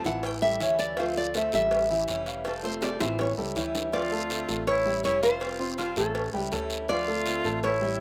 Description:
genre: latin, Cuban son and guajira.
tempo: 162 BPM.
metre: 4/4.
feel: straight.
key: D minor.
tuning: A4 = 439 Hz.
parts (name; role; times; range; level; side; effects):
nylon-string guitar; melody; 0.0-8.0 s; A4 to G5; -30 LUFS; equal; slapback echo.
picked acoustic archtop guitar; accompaniment; 0.0-8.0 s; D3 to F4; -38 LUFS; equal; slapback echo.
dark grand piano; arpeggios; 0.0-8.0 s; E3 to F6; -34 LUFS; equal; none.
upright bass; bass; 0.0-8.0 s; F1 to D2; -41 LUFS; equal; none.
guiro; percussion; 0.0-8.0 s; none; -40 LUFS; equal; none.
cowbell and bongos; percussion; 0.2-7.8 s; none; -38 LUFS; equal; none.
breathy bright jazz flute; second line; 3.9-8.0 s; C#4 to F4; -35 LUFS; equal; slapback echo.
room: little or no reverb.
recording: recorded outdoors, with no room sound.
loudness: -27 LUFS.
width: mono.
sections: 0.0-3.9 A section; 3.9-8.0 B section.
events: nylon-string guitar solo 0.0-3.9; drum fill 2.8-3.9.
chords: 0.2 A7; 1.0 Dm7; 1.7 A7; 2.5 Fadd9; 3.2 A7; 3.9 Dm7; 4.7 A7; 5.4 Fadd9; 6.2 A7; 6.9 Dm7.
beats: 0.23 0.60 | 0.97 1.34 1.71 2.08 | 2.45 2.82 3.19 3.56 | 3.93 4.30 4.67 5.04 | 5.41 5.78 6.15 6.52 | 6.89 7.26 7.63 8.00.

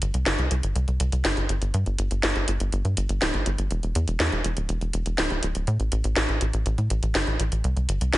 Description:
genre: italo disco.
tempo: 122 BPM.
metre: 4/4.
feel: straight.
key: unclear.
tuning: A4 = 438 Hz.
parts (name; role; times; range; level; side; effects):
tight sequencer bass; bass; 0.0-8.2 s; D1 to A2; -24 LUFS; equal; tube saturation.
house drum kit; drums; 0.0-8.2 s; hi-hat, snare drum; -26 LUFS; equal; gated reverb.
room: light reverb.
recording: nothing above 10.9 kHz.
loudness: -22 LUFS.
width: side -17 dB against mid.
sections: 0.0-8.2 A section.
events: none.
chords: none.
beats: 0.27 0.76 1.25 | 1.74 2.23 2.72 3.22 | 3.71 4.20 4.69 5.18 | 5.67 6.17 6.66 7.15 | 7.64 8.13.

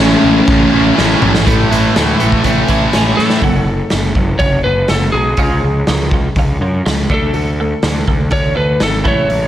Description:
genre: quiet-loud alternative rock.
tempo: 122 BPM.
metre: 4/4.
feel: straight.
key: F# minor.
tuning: A4 = 443 Hz.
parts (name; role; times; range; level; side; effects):
lightly driven lead guitar; melody; 0.0-9.5 s; C#4 to C#5; -17 LUFS; equal; slapback echo.
thick fuzz guitar; riff; 0.0-3.4 s; A2 to E4; -13 LUFS; equal; distortion.
fuzz picked electric bass; bass; 0.0-9.5 s; F#1 to A2; -16 LUFS; equal; overdrive.
raw garage drum kit; drums; 0.5-9.4 s; crash cymbal, hi-hat, kick drum, snare drum, toms; -16 LUFS; equal; none.
twelve-string electric guitar; arpeggios; 1.5-9.5 s; F#2 to E4; -20 LUFS; right 2 dB; phaser, slapback echo.
room: light reverb, small room ambience.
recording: none.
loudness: -11 LUFS.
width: side -12 dB against mid.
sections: 0.0-1.5 A section; 1.5-3.4 B section; 3.4-9.5 C section.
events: drum fill 1.0-1.5, 3.2.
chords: 0.0 A; 3.4 F#m; 5.4 C#; 7.1 D5.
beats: 0.48 0.97 | 1.46 1.95 2.44 2.93 | 3.42 3.91 4.40 4.89 | 5.38 5.88 6.37 6.86 | 7.35 7.84 8.33 8.81 | 9.30.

